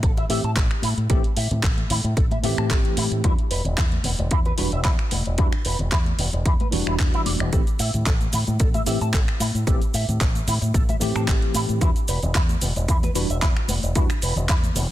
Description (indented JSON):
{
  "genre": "nu-disco, nu disco",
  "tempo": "112 BPM",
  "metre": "4/4",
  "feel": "swing 54% on 16ths",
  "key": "A dorian",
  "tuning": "A4 = 440 Hz",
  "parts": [
    { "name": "electric guitar with an envelope filter", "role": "riff", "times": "0.0-14.8 s", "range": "B3 to A5", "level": "-31 LUFS", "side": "right 1 dB", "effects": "ensemble chorus, dub echo" },
    { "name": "fingered electric bass with an envelope filter", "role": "bass", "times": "0.0-14.9 s", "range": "E1 to A2", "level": "-24 LUFS", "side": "equal", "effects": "none" },
    { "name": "electronic kick drum", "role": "drums", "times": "0.0-14.6 s", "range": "none", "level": "-21 LUFS", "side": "equal", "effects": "studio reverb" },
    { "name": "pop drum kit", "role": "drums", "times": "0.0-14.9 s", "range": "finger snaps, handclaps, hi-hat, shaker", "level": "-28 LUFS", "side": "right 1 dB", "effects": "studio reverb, soft clipping on snare" },
    { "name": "congas", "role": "percussion", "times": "0.2-14.9 s", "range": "none", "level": "-33 LUFS", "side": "left 3 dB", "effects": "none" },
    { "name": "tine electric piano", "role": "accompaniment", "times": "0.3-14.1 s", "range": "E3 to G4", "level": "-29 LUFS", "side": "left 1 dB", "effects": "overdrive, medium stereo tremolo, sidechain pumping, dub echo" }
  ],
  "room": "digital ambience",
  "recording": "dense, heavily limited modern master",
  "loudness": "-19 LUFS",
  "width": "side -14 dB against mid",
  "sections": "0.0-14.9 A section",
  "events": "none",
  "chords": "0.0 Am7; 3.2 Em9; 7.5 Am7; 11.8 E5",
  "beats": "0.03 0.56 | 1.10 1.64 2.17 2.71 | 3.24 3.78 4.32 4.85 | 5.39 5.92 6.46 6.99 | 7.53 8.06 8.60 9.14 | 9.67 10.21 10.74 11.28 | 11.81 12.35 12.89 13.42 | 13.96 14.49"
}